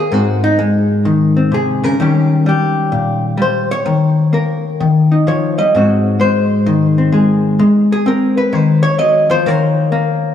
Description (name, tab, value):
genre	solo jazz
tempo	129 BPM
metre	4/4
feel	swing 66% on 8ths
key	unclear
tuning	A4 = 438 Hz
part	hollow-body jazz guitar	solo	0.0-10.3 s	Ab2 to Eb5	-11 LUFS	left 2 dB	none
room	wet plate reverb, RT60 2.7 s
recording	heard from further back in the room, small room ambience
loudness	-11 LUFS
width	side -9 dB against mid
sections	0.0-10.3 A section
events	hollow-body jazz guitar solo 0.0-10.3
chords	0.1 Ab; 2.0 Eb7; 5.7 Ab7; 9.4 Eb7(no3)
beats	| 0.11 0.58 1.05 1.51 | 1.98 2.45 2.92 3.38 | 3.85 4.32 4.78 5.25 | 5.72 6.18 6.65 7.12 | 7.58 8.05 8.52 8.98 | 9.45 9.91